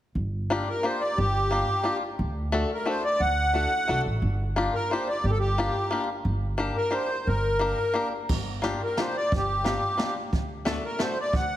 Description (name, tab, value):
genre	musette waltz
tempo	178 BPM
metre	3/4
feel	straight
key	G minor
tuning	A4 = 440 Hz
part	upright bass	bass	0.2-11.6 s	G1 to D2	-28 LUFS	right 1 dB	none
part	bluegrass banjo	accompaniment	0.5-11.2 s	A3 to Bb4	-30 LUFS	left 3 dB	none
part	accordion	melody	0.7-11.6 s	G4 to F#5	-27 LUFS	equal	light tremolo tuning
part	jazz brush drum kit	drums	8.3-11.4 s	crash cymbal, hi-hat, kick drum, snare drum	-30 LUFS	right 1 dB	none
room	moderate recital hall reverb, RT60 1.7 s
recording	heavily compressed radio sound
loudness	-24 LUFS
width	side -12 dB against mid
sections	0.2-8.3 A section; 8.3-11.6 A section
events	none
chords	0.2 Gm7; 2.2 D; 4.2 Gm7; 6.3 Gm; 8.3 Gm7; 10.3 D